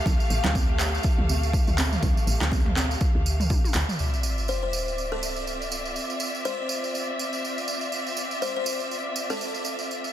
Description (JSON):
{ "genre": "afro house", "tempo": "122 BPM", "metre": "4/4", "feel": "swing 58% on 16ths", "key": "D minor", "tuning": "A4 = 441 Hz", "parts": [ { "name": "dark studio string section", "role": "sustained chords", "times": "0.0-10.1 s", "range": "A3 to F5", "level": "-31 LUFS", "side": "equal", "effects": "sidechain pumping" }, { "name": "woody FM bass", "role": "bass", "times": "0.1-3.8 s", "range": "A1 to D2", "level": "-26 LUFS", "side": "equal", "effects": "sidechain pumping" }, { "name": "electronic kick drum", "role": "drums", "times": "0.1-3.6 s", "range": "none", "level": "-24 LUFS", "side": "equal", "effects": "overdrive, studio reverb" }, { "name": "congas", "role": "percussion", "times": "0.1-2.9 s", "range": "none", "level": "-32 LUFS", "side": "right 3 dB", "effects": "none" }, { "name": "tambourine", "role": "percussion", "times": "0.1-10.1 s", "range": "none", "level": "-33 LUFS", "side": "right 5 dB", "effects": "none" }, { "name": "deep house drum kit", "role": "drums", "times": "0.4-4.0 s", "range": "handclaps, toms", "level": "-30 LUFS", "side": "right 1 dB", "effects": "overdrive, low-pass filter on snare, studio reverb, low-pass filter on toms" }, { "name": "sub drop", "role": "sound effects", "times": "4.0-6.0 s", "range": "none", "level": "-30 LUFS", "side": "equal", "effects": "none" }, { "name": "buzzing kalimba", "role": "melody", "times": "4.5-9.5 s", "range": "A4 to C5", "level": "-32 LUFS", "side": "left 3 dB", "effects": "ping-pong delay" } ], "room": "light reverb, studio reverb", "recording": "dense, heavily limited modern master", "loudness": "-23 LUFS", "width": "side -11 dB against mid", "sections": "0.0-4.0 A section; 4.0-10.1 B section", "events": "drum fill 3.5-4.0; impact 4.0-6.0", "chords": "0.0 Fadd9; 4.0 Dm9" }